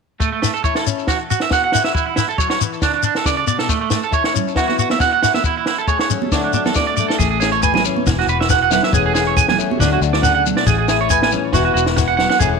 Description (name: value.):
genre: highlife guitar band.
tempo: 138 BPM.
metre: 4/4.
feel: swing 54% on 16ths.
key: A major.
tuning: A4 = 440 Hz.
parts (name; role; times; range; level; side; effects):
clean electric guitar; accompaniment; 0.2-12.6 s; A2 to B4; -23 LUFS; left 15 dB; none.
electric guitar at the edge of break-up; arpeggios; 0.2-12.5 s; A3 to G#5; -18 LUFS; right 9 dB; tape echo.
compact cocktail drum kit; drums; 0.2-12.5 s; kick drum, snare drum; -21 LUFS; equal; none.
shekere; percussion; 0.2-12.5 s; none; -22 LUFS; left 10 dB; none.
congas; percussion; 4.4-12.3 s; none; -25 LUFS; right 12 dB; none.
fingered electric bass; bass; 7.2-12.6 s; E1 to D2; -22 LUFS; left 2 dB; none.
room: moderate plate reverb, RT60 1.6 s, small room ambience.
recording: 1960s-style stereo with parts hard left and right.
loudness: -14 LUFS.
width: side -5 dB against mid.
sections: 0.2-7.2 A section; 7.2-12.6 B section.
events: none.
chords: 0.2 A; 1.1 Esus2; 2.0 A/E (rootless); 2.8 D5; 3.7 A; 4.6 Esus2; 5.4 Amaj7/E; 6.3 D; 7.2 Amaj7; 8.1 Esus2; 8.9 Amaj7/E; 9.8 D; 10.7 Amaj7; 11.5 Esus2.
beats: | 0.21 0.65 1.08 1.52 | 1.96 2.39 2.83 3.27 | 3.70 4.14 4.58 5.01 | 5.45 5.88 6.32 6.75 | 7.19 7.63 8.06 8.50 | 8.93 9.37 9.80 10.23 | 10.67 11.10 11.54 11.97 | 12.40.